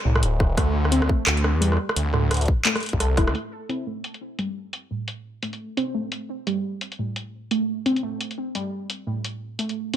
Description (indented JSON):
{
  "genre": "half-time drum and bass",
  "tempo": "173 BPM",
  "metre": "4/4",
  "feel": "swing 59% on 16ths, half-time",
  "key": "A minor",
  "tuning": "A4 = 440 Hz",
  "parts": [
    { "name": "warbly dusty pluck", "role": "arpeggios", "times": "0.1-10.0 s", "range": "A2 to A4", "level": "-27 LUFS", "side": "right 1 dB", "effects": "chorus, digital delay" },
    { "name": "phased detuned saw bass", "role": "bass", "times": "0.1-3.3 s", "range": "D1 to E2", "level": "-21 LUFS", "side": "equal", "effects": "phaser" },
    { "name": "drum and bass drum kit", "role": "drums", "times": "0.2-10.0 s", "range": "handclaps, hi-hat, rim click", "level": "-26 LUFS", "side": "equal", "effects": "low-pass filter on hats, low-pass filter on snare, low-pass filter on room" },
    { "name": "electronic kick drum", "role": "drums", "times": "0.4-3.3 s", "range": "none", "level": "-22 LUFS", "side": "equal", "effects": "none" }
  ],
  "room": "light reverb, digital ambience",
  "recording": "none",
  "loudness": "-22 LUFS",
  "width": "side -10 dB against mid",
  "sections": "0.0-3.3 A section; 3.3-10.0 B section",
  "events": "drop 0.0-3.3; drum fill 3.2",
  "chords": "0.0 Dsus2; 3.3 Am"
}